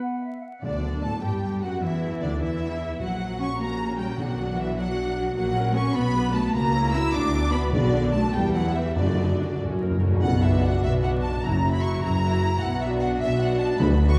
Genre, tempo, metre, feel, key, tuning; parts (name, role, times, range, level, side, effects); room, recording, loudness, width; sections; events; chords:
quick classical-period movement for symphony orchestra; 101 BPM (dotted quarters); 6/8; straight; B minor; A4 = 440 Hz
large flute ensemble; second line; 0.0-0.6 s; E5 to F#5; -39 LUFS; equal
rich chamber violin section; melody; 0.6-14.2 s; D5 to E6; -35 LUFS; equal
rich chamber violin section; second line; 0.6-14.1 s; D5 to E6; -35 LUFS; equal
rich chamber viola section; accompaniment; 0.6-14.2 s; G3 to B4; -32 LUFS; equal
rich chamber cello section; bass; 0.6-14.2 s; D2 to E4; -31 LUFS; equal
rich studio double bass section; bass; 0.6-14.2 s; F#1 to A2; -28 LUFS; equal
timpani; percussion; 0.6-1.2, 4.2-4.7, 7.7-10.2, 13.8-14.2 s; F#2 to D3; -29 LUFS; equal
wet scoring stage reverb, RT60 1.6 s; heard from further back in the room, vinyl crackle; -24 LUFS; mono
0.6-10.2 A section; 10.2-14.2 B section
timpani fill 9.6-10.2
0.0 B5; 0.6 Dadd11; 1.8 Dsus2; 3.0 F#/A#; 4.2 Bm; 5.4 F#/A#; 5.9 Bm; 6.5 F#7/C#; 7.1 Bm/D; 7.7 Bm; 8.3 Em; 9.0 Bm/F#; 9.6 F#; 10.2 Bm; 11.4 F#7; 12.6 Bm